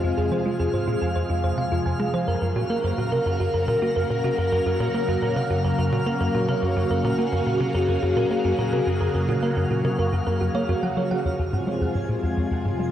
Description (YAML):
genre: ambient, sequencer-driven space music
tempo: 107 BPM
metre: 4/4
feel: straight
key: unclear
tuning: A4 = 440 Hz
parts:
  - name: phased string machine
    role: sustained chords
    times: 0.0-12.9 s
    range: C3 to Bb4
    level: -25 LUFS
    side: left 2 dB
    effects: ensemble chorus, phaser, shimmer reverb
  - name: thumb-piano-like synth pluck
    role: arpeggios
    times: 0.0-12.9 s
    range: F4 to Ab5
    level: -28 LUFS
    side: right 5 dB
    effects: chorus, auto-pan, tape echo, shimmer reverb
  - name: tight sequencer bass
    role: riff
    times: 0.0-12.9 s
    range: F2 to Bb3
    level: -25 LUFS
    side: left 1 dB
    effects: tape echo
  - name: twinkling granular texture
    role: texture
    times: 0.0-12.9 s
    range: F5 to Ab5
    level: -33 LUFS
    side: equal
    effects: built-in reverb, shimmer reverb
  - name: analog drone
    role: bass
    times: 12.8-12.9 s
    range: F2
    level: -40 LUFS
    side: left 1 dB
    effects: none
room: wet spring reverb, RT60 2.7 s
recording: home recording on cassette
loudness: -21 LUFS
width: side -11 dB against mid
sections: 0.0-11.3 A section; 11.3-12.9 B section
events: filter sweep on analog synth bass 11.3-12.9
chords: 0.0 Fm; 2.3 Gb; 11.3 Fm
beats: | 0.04 0.60 1.16 1.72 | 2.28 2.84 3.40 3.96 | 4.52 5.08 5.64 6.20 | 6.76 7.33 7.89 8.45 | 9.01 9.57 10.13 10.69 | 11.25 11.81 12.37